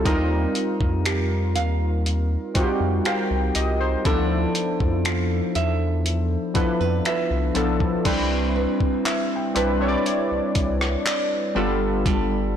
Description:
contemporary R&B; 60 BPM; 4/4; straight; A4 = 445 Hz
warm analog keys; accompaniment; 0.0-12.6 s; F3 to G5; -23 LUFS; left 1 dB; chorus
nylon-string guitar; arpeggios; 0.0-12.6 s; G3 to F5; -29 LUFS; right 6 dB; ping-pong delay
round analog bass; bass; 0.0-12.6 s; G1 to F2; -24 LUFS; equal
dusty soul sampler-style drum kit; drums; 0.1-12.3 s; crash cymbal, finger snaps, handclaps, hi-hat, kick drum, rim click; -26 LUFS; equal; soft clipping on snare
felt-muted upright piano; texture; 9.1-11.1 s; E5 to G5; -34 LUFS; left 5 dB; ping-pong delay
light reverb, digital ambience; blown-out, overdriven recording, overdrive; -20 LUFS; side -9 dB against mid
0.0-8.1 A section; 8.1-12.6 B section
0.1 Eb69; 4.1 Dm69; 8.1 Cmaj9; 11.6 G9

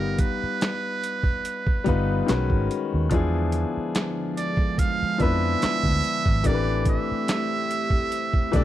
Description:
R&B, neo-soul; 72 BPM; 4/4; swing 53% on 16ths; A4 = 440 Hz
trumpet with metal mute; melody; 0.0-8.6 s; Bb4 to F5; -28 LUFS; right 5 dB; slapback echo
clear grand piano; accompaniment; 0.0-8.6 s; D#3 to D5; -27 LUFS; left 5 dB
vintage muted fingered electric bass; bass; 0.0-8.6 s; G1 to F2; -25 LUFS; right 1 dB; transformer saturation
boom bap sampler-style drum kit; drums; 0.2-8.6 s; handclaps, hi-hat, kick drum, snare drum; -24 LUFS; right 1 dB
chorused pulse-width pad; sustained chords; 3.1-8.6 s; D3 to G4; -32 LUFS; right 2 dB
little or no reverb; dry, close 1970s-style studio recording; -21 LUFS; side -13 dB against mid
0.0-8.6 A section
0.0 Gaug7; 2.3 B69; 3.1 E7b9; 6.4 Am7

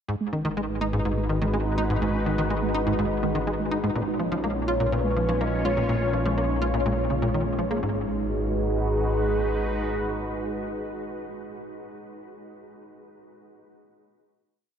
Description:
ambient, sequencer-driven space music; 124 BPM; 4/4; straight; G# dorian; A4 = 441 Hz
sweeping resonant pad; sustained chords; 0.1-11.9 s; A#2 to C#5; -30 LUFS; equal; chorus
tight sequencer bass; riff; 0.1-8.1 s; G#2 to E#4; -29 LUFS; equal; analog chorus, tape echo
analog drone; bass; 0.5-9.2 s; G#1 to A#1; -29 LUFS; equal; chorus, tube saturation
warbly dusty pluck; arpeggios; 0.2-8.1 s; G#3 to G#4; -32 LUFS; moving between left 2 dB and right 5 dB; chorus, auto-pan, tape echo
soft octave-layered synth lead; melody; 4.7-11.6 s; G#4 to D#5; -31 LUFS; equal; chorus, phaser, tape echo
wet huge ambient reverb, RT60 9.2 s; dark, warm production; -23 LUFS; side -8 dB against mid
0.1-7.8 A section; 7.8-11.7 final chord
0.1 G#m7; 4.0 A#m; 7.8 G#m7

